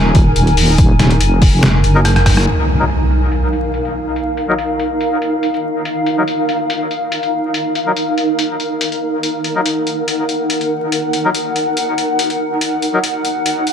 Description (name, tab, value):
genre	deep dubstep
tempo	142 BPM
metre	4/4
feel	half-time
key	Eb minor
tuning	A4 = 440 Hz
part	granular cloud pad	sustained chords	0.0-13.7 s	Eb4 to Ab5	-17 LUFS	equal	built-in reverb
part	deep soft wobble bass	bass	0.0-2.5 s	Eb1 to Gb1	-12 LUFS	equal	chorus
part	electronic kick drum	drums	0.1-2.4 s	none	-13 LUFS	equal	overdrive
part	trip hop sampler-style drum kit	drums	0.1-13.7 s	hi-hat, rim click, snare drum	-20 LUFS	left 2 dB	low-pass filter on hats, low-pass filter on snare, low-pass filter on room
part	melodica	stabs	1.9-13.0 s	Gb3 to Bb4	-24 LUFS	left 3 dB	low-pass filter, dub echo
part	impact	sound effects	2.5-4.2 s	none	-18 LUFS	equal	none
room	light reverb, digital ambience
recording	vinyl crackle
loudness	-13 LUFS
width	side -8 dB against mid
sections	0.0-2.5 A section; 2.5-13.7 B section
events	drop 0.0-2.5; drum fill 2.0-2.5; band accent 2.4; impact 2.5-4.2; filter sweep on drum 2.5-13.7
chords	0.0 Ebm